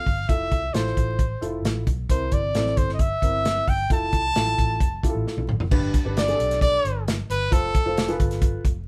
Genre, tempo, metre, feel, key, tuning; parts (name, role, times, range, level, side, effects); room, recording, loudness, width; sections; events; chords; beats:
uptempo 1960s-style soul; 133 BPM; 4/4; straight; A4 = 440 Hz
clear trumpet; melody; 0.0-8.2 s; A4 to A5; -27 LUFS; equal
dark upright piano; accompaniment; 0.0-8.7 s; G2 to C5; -32 LUFS; equal
vintage muted fingered electric bass; bass; 0.1-8.9 s; F1 to C2; -31 LUFS; equal
warm soul drum kit; drums; 0.1-8.8 s; crash cymbal, hi-hat, kick drum, snare drum, toms; -25 LUFS; equal
moderate small room reverb, RT60 0.5 s; band playing live in one room, vinyl crackle; -23 LUFS; mono
0.0-5.7 A section; 5.7-8.9 B section
drum fill 5.3-5.7
0.3 Fmaj7; 2.1 C7; 3.9 Fmaj7; 5.7 G; 7.5 F
| 0.29 0.74 1.19 1.65 | 2.10 2.55 3.00 3.46 | 3.91 4.36 4.81 5.26 | 5.71 6.17 6.62 7.07 | 7.52 7.97 8.42 8.88